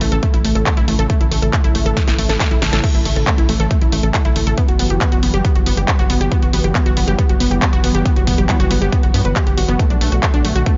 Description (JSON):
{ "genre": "uplifting trance", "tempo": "138 BPM", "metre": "4/4", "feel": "straight", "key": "unclear", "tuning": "A4 = 440 Hz", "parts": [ { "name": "analog string pad", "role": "sustained chords", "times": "0.0-10.8 s", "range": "C#3 to A4", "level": "-26 LUFS", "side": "equal", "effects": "ensemble chorus, sidechain pumping" }, { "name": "unison pluck", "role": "arpeggios", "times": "0.0-10.7 s", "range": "A3 to B4", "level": "-24 LUFS", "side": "equal", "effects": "cassette tape, sidechain pumping, tape echo" }, { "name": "tight sequencer bass", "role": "bass", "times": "0.0-10.6 s", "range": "G1 to G2", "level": "-21 LUFS", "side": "equal", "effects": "sidechain pumping" }, { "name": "big-room dance drum kit", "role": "drums", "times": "0.0-10.8 s", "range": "crash cymbal, handclaps, hi-hat, snare drum", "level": "-25 LUFS", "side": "equal", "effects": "sidechain pumping on hats, sidechain pumping on cymbals" }, { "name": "electronic kick drum", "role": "drums", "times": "0.2-10.8 s", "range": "none", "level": "-19 LUFS", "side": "equal", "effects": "none" } ], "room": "little or no reverb", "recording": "nothing above 7.5 kHz", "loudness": "-16 LUFS", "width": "mono", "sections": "0.0-10.8 A section", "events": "filter sweep on analog synth pad 0.0-10.8; drum fill 2.0-2.8", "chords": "0.0 A; 4.6 Emadd9/G; 9.8 Bm7", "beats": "0.23 0.66 | 1.10 1.53 1.97 2.40 | 2.84 3.27 3.71 4.14 | 4.58 5.01 5.45 5.88 | 6.32 6.75 7.18 7.62 | 8.05 8.49 8.92 9.36 | 9.79 10.23 10.66" }